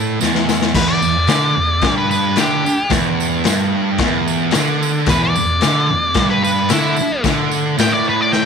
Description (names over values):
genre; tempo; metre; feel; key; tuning
garage rock duo or trio; 111 BPM; 4/4; straight; E minor; A4 = 440 Hz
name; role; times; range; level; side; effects
thick fuzz guitar; riff; 0.0-8.5 s; E2 to D3; -17 LUFS; right 2 dB; distortion
raw garage drum kit; drums; 0.2-8.4 s; crash cymbal, kick drum, snare drum; -19 LUFS; left 5 dB; none
tambourine; percussion; 0.2-8.4 s; none; -29 LUFS; right 14 dB; none
octave-fuzz lead guitar; melody; 0.8-8.5 s; E4 to G5; -18 LUFS; left 1 dB; distortion
room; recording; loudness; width
light reverb, small room ambience; 1960s-style stereo; -13 LUFS; side -6 dB against mid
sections
0.7-8.5 A section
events
drum fill 0.2-0.7; lead electric guitar solo 0.7-8.5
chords
0.0 N.C.; 0.7 Em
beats
0.21 | 0.74 1.28 1.82 2.36 | 2.90 3.44 3.98 4.52 | 5.06 5.60 6.14 6.69 | 7.23 7.77 8.31